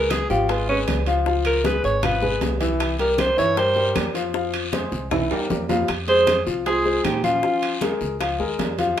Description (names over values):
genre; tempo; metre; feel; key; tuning
Afro-Cuban jazz; 156 BPM; 4/4; straight; F minor; A4 = 440 Hz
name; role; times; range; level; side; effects
warm alto saxophone; melody; 0.0-8.0 s; Db4 to Db5; -21 LUFS; right 1 dB; none
warm grand piano; accompaniment; 0.0-9.0 s; E3 to F5; -24 LUFS; left 3 dB; none
upright bass; bass; 0.0-8.9 s; Ab1 to G2; -28 LUFS; equal; none
bongos; percussion; 0.1-9.0 s; none; -31 LUFS; left 7 dB; none
claves; percussion; 0.1-9.0 s; none; -37 LUFS; right 2 dB; none
congas; percussion; 0.1-9.0 s; none; -31 LUFS; equal; none
guiro; percussion; 0.1-9.0 s; none; -36 LUFS; left 5 dB; none
timbales; percussion; 0.1-9.0 s; none; -30 LUFS; right 6 dB; none
growling clarinet; second line; 6.1-8.0 s; Db4 to Ab4; -26 LUFS; right 4 dB; none
room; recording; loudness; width
moderate studio reverb, RT60 0.5 s; minimal, uncompressed stereo recording; -19 LUFS; side -10 dB against mid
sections
0.0-5.9 A section; 5.9-9.0 B section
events
alto saxophone solo 0.0-5.9; drum fill 5.1-5.9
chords
0.0 Db7; 2.8 C7; 4.3 Fm; 5.1 C7; 5.9 Fm; 7.4 Bbm7